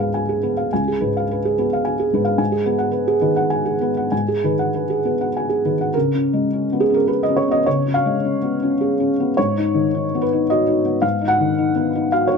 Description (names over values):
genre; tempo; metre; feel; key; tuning
neoclassical minimalist piano; 97-112 BPM; 3/4; rubato; unclear; A4 = 438 Hz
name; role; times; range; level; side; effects
felt-muted upright piano; solo; 0.0-12.4 s; C#2 to G#5; -17 LUFS; equal; none
room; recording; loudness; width
light reverb; dark, warm production; -17 LUFS; side -5 dB against mid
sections
0.0-5.9 A section; 5.9-12.4 B section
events
none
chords
0.0 C#7 (rootless); 2.4 G#m7; 5.9 C#7; 9.4 G#m7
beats
0.14 | 0.71 1.28 1.84 | 2.39 2.94 3.52 | 4.11 4.73 5.34 | 5.94 6.52 7.09 | 7.66 8.23 8.80 | 9.37 9.93 10.49 | 11.03 11.58 12.14